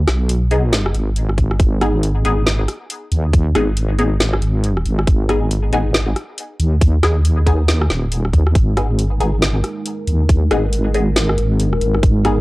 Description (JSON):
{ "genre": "deep dubstep", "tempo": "138 BPM", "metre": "4/4", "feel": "swing 61% on 16ths, half-time", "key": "G# minor", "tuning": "A4 = 440 Hz", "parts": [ { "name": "deep soft wobble bass", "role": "bass", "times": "0.0-12.4 s", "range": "D#1 to D#2", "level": "-16 LUFS", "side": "equal", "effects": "chorus" }, { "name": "garage drum kit", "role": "drums", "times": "0.1-12.4 s", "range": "hi-hat, rim click, snare drum", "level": "-20 LUFS", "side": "equal", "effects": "none" }, { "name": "filtered dub chord stab", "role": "stabs", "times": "0.5-12.4 s", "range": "B3 to G#4", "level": "-22 LUFS", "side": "left 2 dB", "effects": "phaser, ensemble chorus, dub echo" }, { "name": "electronic kick drum", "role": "drums", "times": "1.4-12.1 s", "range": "none", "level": "-14 LUFS", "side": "equal", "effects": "none" }, { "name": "dark analog pad", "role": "sustained chords", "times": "9.1-12.4 s", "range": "G#3 to A#4", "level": "-24 LUFS", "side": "equal", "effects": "chorus, phaser" } ], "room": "little or no reverb", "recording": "dry, gritty hardware recording, cassette tape", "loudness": "-14 LUFS", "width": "side -20 dB against mid", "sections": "0.0-12.4 A section", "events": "none", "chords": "0.0 G#m" }